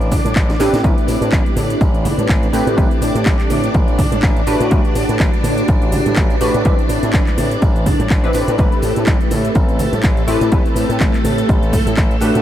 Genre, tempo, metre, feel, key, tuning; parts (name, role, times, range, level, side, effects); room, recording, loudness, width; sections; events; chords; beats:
filtered disco house; 124 BPM; 4/4; swing 56% on 16ths; A dorian; A4 = 442 Hz
funky polysynth comp; accompaniment; 0.0-12.4 s; A3 to B4; -20 LUFS; equal; chorus, phaser, sidechain pumping
string machine, full ensemble; sustained chords; 0.0-12.4 s; A3 to D5; -22 LUFS; equal; ensemble chorus, sidechain pumping
slap bass with an envelope filter; bass; 0.0-12.4 s; A1 to A2; -20 LUFS; equal; sidechain pumping
house drum kit; drums; 0.0-12.4 s; handclaps, hi-hat, shaker, snare drum; -26 LUFS; equal; overdrive, sidechain pumping on hats, sidechain pumping on perc
tambourine and congas; percussion; 0.0-12.4 s; -28 LUFS; right 2 dB; sidechain pumping on perc
electronic kick drum; drums; 0.1-12.1 s; -16 LUFS; equal; overdrive
light reverb; -13 LUFS; side -11 dB against mid
0.0-12.4 A section
drum fill 0.5-0.8
0.0 Am9; 4.5 Gmaj9/A; 6.7 Cmaj7/A; 8.6 Am9
0.36 | 0.84 1.33 1.81 2.29 | 2.78 3.26 3.75 4.23 | 4.71 5.20 5.68 6.17 | 6.65 7.13 7.62 8.10 | 8.59 9.07 9.55 10.04 | 10.52 11.01 11.49 11.97